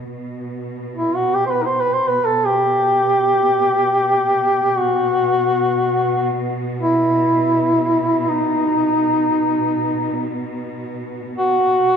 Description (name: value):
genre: caucasian folk, Caucasian lament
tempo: free time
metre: none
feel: none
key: unclear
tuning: A4 = 440 Hz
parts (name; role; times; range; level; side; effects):
- rich studio string section; drone; 0.0-12.0 s; B2; -26 LUFS; right 1 dB; none
- warm duduk; melody; 1.0-12.0 s; D#4 to C5; -16 LUFS; equal; none
room: wet church reverb, RT60 2.6 s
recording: none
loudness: -15 LUFS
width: side -7 dB against mid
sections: 0.1-12.0 A section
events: none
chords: none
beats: free time